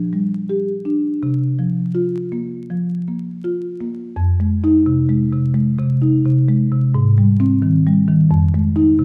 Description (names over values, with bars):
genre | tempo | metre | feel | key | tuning
classical, contemporary piece for solo marimba | 80-88 BPM | 4/4 | rubato | F dorian | A4 = 444 Hz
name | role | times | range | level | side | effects
marimba with soft mallets | solo | 0.0-9.0 s | F2 to G4 | -17 LUFS | equal | none
room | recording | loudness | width
wet recital hall reverb, RT60 1.6 s | vinyl crackle | -17 LUFS | mono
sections
0.0-4.2 A section; 4.2-9.0 B section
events
none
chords
0.0 Bb6 (rootless); 1.2 C7sus4; 4.2 Fm7; 6.9 Abmaj7; 8.3 Fm7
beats
0.48 | 1.21 1.94 2.69 3.43 | 4.15 4.85 5.55 6.24 | 6.93 7.62 8.31 8.99